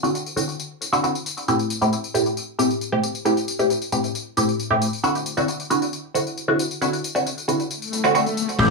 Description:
breakbeat, breaks; 135 BPM; 4/4; straight; A4 = 440 Hz
filtered dub chord stab; stabs; 0.0-8.7 s; A2 to G4; -21 LUFS; equal; phaser, wide subtle chorus, digital delay
tambourine; drums; 0.0-8.7 s; -29 LUFS; left 4 dB
swell and impact; sound effects; 7.8-8.7 s; -26 LUFS; left 3 dB
detuned saw bass; bass; 8.6-8.7 s; A1; -17 LUFS; left 2 dB
crunchy breakbeat drum kit; drums; 8.6-8.7 s; crash cymbal, hi-hat, kick drum; -30 LUFS; left 1 dB
wet small room reverb, RT60 0.6 s; small room ambience; -20 LUFS; side -2 dB against mid
0.0-8.6 A section
filter sweep on synth stab 0.0-8.6; swell 7.8-8.6
0.0 D7; 1.5 Am7; 5.0 D7
0.15 0.59 1.04 | 1.48 1.93 2.37 2.82 | 3.26 3.71 4.15 4.59 | 5.04 5.48 5.93 6.37 | 6.82 7.26 7.71 8.15 | 8.59

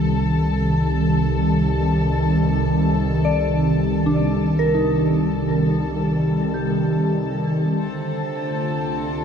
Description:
ambient; 67 BPM; 4/4; straight; C dorian; A4 = 443 Hz
warm analog pad; sustained chords; 0.0-9.2 s; C3 to F4; -19 LUFS; equal; chorus
soft synth bell; arpeggios; 0.0-9.2 s; D4 to Eb6; -25 LUFS; equal; chorus, phaser, diffuse ambient delay
deep rumbling drone; bass; 0.0-9.2 s; C2; -28 LUFS; equal; built-in reverb, phaser
warm chamber violin section; texture; 0.0-9.2 s; A4 to A5; -29 LUFS; left 4 dB
pedal harmonium; drone; 7.7-9.2 s; C3 to C4; -31 LUFS; right 4 dB
wet concert hall reverb, RT60 2.1 s; dark, warm production; -18 LUFS; side -7 dB against mid
0.0-9.2 A section
0.0 Cm7; 7.8 Dm/C
| 0.59 1.47 2.36 3.25 | 4.14 5.04 5.94 6.85 | 7.75 8.65

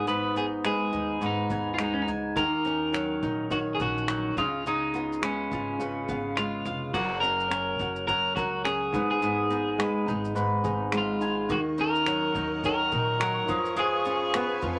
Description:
acoustic pop; 105 BPM; 4/4; swing 60% on 16ths; F# major; A4 = 440 Hz
electric guitar at the edge of break-up; melody; 0.0-14.6 s; C#4 to B4; -31 LUFS; equal
flamenco guitar; accompaniment; 0.0-14.8 s; G#2 to A#4; -32 LUFS; equal
bowl-back mandolin; arpeggios; 0.0-14.8 s; G#3 to G#5; -37 LUFS; equal
upright bass; bass; 0.0-14.8 s; E#1 to A#2; -41 LUFS; equal
cloth-damped thuddy drum kit; drums; 0.1-14.8 s; crash cymbal, finger snaps, kick drum, shaker; -37 LUFS; equal
rich studio string section; sustained chords; 11.5-14.8 s; A#4 to C#6; -38 LUFS; equal
moderate studio reverb, RT60 0.5 s; -28 LUFS; mono
0.0-6.9 A section; 6.9-14.8 B section
0.0 G#m; 2.4 D#m7; 4.4 C#7; 6.9 F#; 8.9 G#m; 11.5 D#m7; 13.5 C#7/E#
| 0.08 0.66 1.23 1.80 | 2.37 2.94 3.52 4.09 | 4.66 5.23 5.80 6.37 | 6.95 7.52 8.09 8.66 | 9.23 9.80 10.37 10.94 | 11.51 12.08 12.65 13.21 | 13.78 14.35

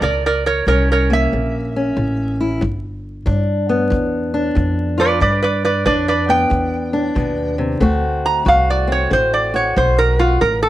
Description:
acoustic country blues, solo or duo; 92 BPM; 4/4; swing 66% on 8ths; A4 = 440 Hz
metal-body resonator slide guitar; melody; 0.0-10.7 s; F4 to Bb5; -16 LUFS; right 2 dB
fingerpicked old ladder-braced acoustic guitar; accompaniment; 0.0-10.7 s; G2 to F#4; -20 LUFS; left 1 dB
upright bass; bass; 0.0-10.7 s; G1 to G2; -20 LUFS; equal
kick drum; drums; 2.6-10.6 s; -24 LUFS; equal
light reverb; vinyl crackle; -15 LUFS; side -14 dB against mid
0.0-10.7 A section
resonator guitar played with a steel bar solo 0.0-10.7
0.0 C13b9; 2.6 G7; 7.8 D7
| 0.02 0.67 1.31 1.96 | 2.61 3.26 3.91 4.56 | 5.21 5.86 6.51 7.16 | 7.81 8.46 9.11 9.76 | 10.41

